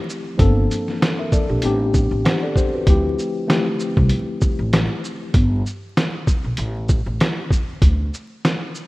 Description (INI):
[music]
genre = hip hop, boom-bap hip-hop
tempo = 97 BPM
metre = 4/4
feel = swing 56% on 16ths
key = D minor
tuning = A4 = 440 Hz
[part]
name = tine electric piano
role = accompaniment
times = 0.0-5.4 s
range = D2 to F#5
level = -22 LUFS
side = left 2 dB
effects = medium stereo tremolo, high-pass filter, low-pass filter
[part]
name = trip hop sampler-style drum kit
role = drums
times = 0.1-8.9 s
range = hi-hat, kick drum, shaker, snare drum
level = -19 LUFS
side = equal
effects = none
[part]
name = upright bass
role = bass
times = 0.4-8.1 s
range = G1 to D2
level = -20 LUFS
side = equal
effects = none
[sound]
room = light reverb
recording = rough home demo mix, vinyl crackle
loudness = -17 LUFS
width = side -20 dB against mid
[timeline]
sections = 0.0-8.9 A section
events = none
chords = 0.4 Gm11; 1.6 Am11; 2.9 Dm11; 5.3 Gm; 6.6 N.C.; 7.8 D5